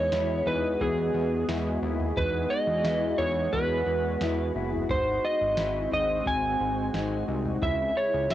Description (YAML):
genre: dream pop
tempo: 88 BPM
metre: 4/4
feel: straight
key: E major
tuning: A4 = 439 Hz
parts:
  - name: electric slide guitar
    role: melody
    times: 0.0-8.3 s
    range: G#4 to G#5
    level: -27 LUFS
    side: right 1 dB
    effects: cassette tape, tape echo
  - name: lush unison pad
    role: sustained chords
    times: 0.0-8.3 s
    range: C#3 to D#5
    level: -33 LUFS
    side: equal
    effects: chorus, cassette tape
  - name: mellow electric guitar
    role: arpeggios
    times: 0.0-8.3 s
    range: B3 to F#4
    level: -34 LUFS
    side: left 7 dB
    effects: ensemble chorus, cassette tape, tape echo
  - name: fat analog bass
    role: bass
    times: 0.0-8.3 s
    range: F#1 to E2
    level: -32 LUFS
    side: equal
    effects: none
  - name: soft vintage rhythm box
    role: drums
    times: 0.1-8.3 s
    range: kick drum, snare drum, toms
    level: -35 LUFS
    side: right 1 dB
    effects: cassette tape
  - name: vibraphone with soft mallets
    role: texture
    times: 0.1-7.9 s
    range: B#3 to G#4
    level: -44 LUFS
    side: right 8 dB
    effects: none
room: moderate spring reverb, RT60 2.4 s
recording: home recording on cassette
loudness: -24 LUFS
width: side -12 dB against mid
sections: 0.0-8.3 A section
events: none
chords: 0.0 Emaj7; 4.9 G#7; 7.6 C#m7